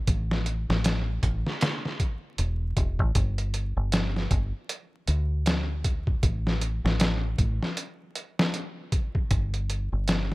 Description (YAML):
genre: trip hop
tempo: 78 BPM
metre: 4/4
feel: swing 59% on 16ths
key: unclear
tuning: A4 = 440 Hz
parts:
  - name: deep dub fingered electric bass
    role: bass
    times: 0.0-10.3 s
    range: E1 to D2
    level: -27 LUFS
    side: equal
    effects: none
  - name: trip hop sampler-style drum kit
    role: drums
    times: 0.1-10.3 s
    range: hi-hat, kick drum, snare drum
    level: -26 LUFS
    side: equal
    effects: none
room: little or no reverb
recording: vinyl crackle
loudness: -25 LUFS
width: side -21 dB against mid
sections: 0.0-10.3 A section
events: none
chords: none